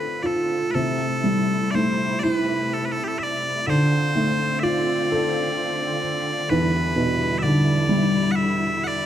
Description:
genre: celtic folk, Celtic slow air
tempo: 60-65 BPM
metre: 3/4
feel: rubato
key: unclear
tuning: A4 = 440 Hz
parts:
  - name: loud bright bagpipes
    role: melody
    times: 0.0-9.1 s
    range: G4 to F#5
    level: -25 LUFS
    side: right 1 dB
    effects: none
  - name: felt-muted upright piano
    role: accompaniment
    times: 0.0-9.1 s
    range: E2 to A4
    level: -22 LUFS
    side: equal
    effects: none
  - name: bright studio string section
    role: sustained chords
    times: 0.0-9.1 s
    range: C3 to F4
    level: -28 LUFS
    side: equal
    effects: none
room: moderate recital hall reverb, RT60 1.7 s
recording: dark, warm production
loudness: -20 LUFS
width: side -10 dB against mid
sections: 0.7-9.1 A section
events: none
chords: 0.0 Dm7; 0.7 C6; 3.7 Dm7; 6.5 Em7

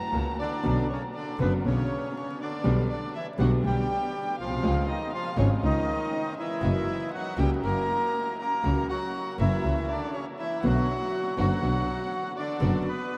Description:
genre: tango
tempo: 120 BPM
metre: 4/4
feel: rubato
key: B harmonic minor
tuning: A4 = 445 Hz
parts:
  - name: warm violin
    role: second line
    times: 0.0-13.2 s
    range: B4 to A#5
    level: -37 LUFS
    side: equal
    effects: none
  - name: bright baby grand piano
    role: accompaniment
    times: 0.1-12.8 s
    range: F#1 to G4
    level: -34 LUFS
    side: equal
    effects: none
  - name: clear studio string section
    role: stabs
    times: 0.1-12.8 s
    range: G3 to F#4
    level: -40 LUFS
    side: equal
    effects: none
  - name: rich double bass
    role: bass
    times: 0.1-12.8 s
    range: F#1 to C#2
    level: -30 LUFS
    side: equal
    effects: none
  - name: bandoneon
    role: melody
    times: 0.4-13.2 s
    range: C#3 to B4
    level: -33 LUFS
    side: equal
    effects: none
room: wet huge ambient reverb, RT60 8.5 s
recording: in a vast, echoing space, vinyl crackle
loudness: -27 LUFS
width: mono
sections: 0.6-13.2 A section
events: none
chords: 0.0 F#7; 0.6 Bmadd9; 2.6 G/B; 4.6 C#; 6.6 F#; 10.6 Bm

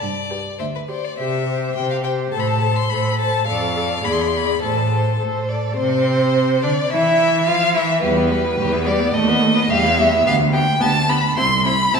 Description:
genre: quick classical-period movement for string quartet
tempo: 106 BPM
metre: 2/4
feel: rubato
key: unclear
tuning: A4 = 439 Hz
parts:
  - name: rich violin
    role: melody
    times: 0.0-12.0 s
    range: E4 to C6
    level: -24 LUFS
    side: left 7 dB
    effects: none
  - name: rich cello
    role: bass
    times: 0.0-12.0 s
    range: C2 to F3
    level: -22 LUFS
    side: right 3 dB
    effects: none
  - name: rich violin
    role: second line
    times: 0.3-12.0 s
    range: B4 to C6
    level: -19 LUFS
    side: left 1 dB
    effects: none
  - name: clear viola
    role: accompaniment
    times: 0.3-12.0 s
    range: G3 to A4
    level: -23 LUFS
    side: right 1 dB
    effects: none
room: wet scoring stage reverb, RT60 1.7 s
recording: recorded in a church or concert hall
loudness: -16 LUFS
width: side -5 dB against mid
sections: 0.0-5.8 A section; 5.8-12.0 B section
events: none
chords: 0.0 G; 1.2 C; 2.3 Am; 3.5 Dm/F; 4.0 E7; 4.6 Am; 5.8 Csus2; 6.9 N.C.; 8.0 Em; 9.1 B7/D#; 9.7 Em; 10.3 G/D; 11.4 C

